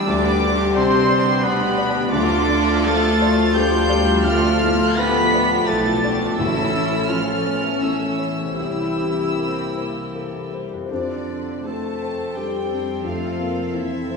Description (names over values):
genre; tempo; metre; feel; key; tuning
cinematic, emotional film score for orchestra; 74-89 BPM; 3/4; rubato; D dorian, F major from 10.9 s; A4 = 440 Hz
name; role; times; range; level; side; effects
warm studio violin section; melody; 0.0-14.2 s; C5 to B6; -26 LUFS; equal; none
clear studio violin section; second line; 0.0-14.2 s; G3 to A5; -28 LUFS; left 1 dB; none
dark clarinet; second line; 0.0-14.2 s; B3 to B4; -26 LUFS; equal; none
dark studio viola section; accompaniment; 0.0-14.2 s; F3 to A4; -28 LUFS; right 1 dB; none
felt-muted upright piano; accompaniment; 0.0-14.2 s; A1 to D5; -25 LUFS; left 1 dB; none
mellow French horn section; sustained chords; 0.0-14.2 s; F3 to G4; -27 LUFS; left 3 dB; none
concert harp; arpeggios; 0.0-14.2 s; F2 to C5; -32 LUFS; left 4 dB; none
warm studio cello section; bass; 0.0-14.2 s; B2 to B3; -27 LUFS; equal; none
warm oboe; second line; 0.1-10.5 s; B4 to B5; -26 LUFS; right 2 dB; none
dark studio double bass section; bass; 0.1-14.2 s; A1 to F2; -29 LUFS; equal; none
timpani; percussion; 2.1-3.2, 6.4-7.4 s; A2 to D3; -31 LUFS; equal; none
room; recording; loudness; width
wet recital hall reverb, RT60 1.3 s; recorded in a church or concert hall, studio reverb; -17 LUFS; side -4 dB against mid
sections
0.0-10.9 A section; 10.9-14.2 B section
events
none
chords
0.0 Dm; 6.4 A; 8.6 C7; 10.9 F6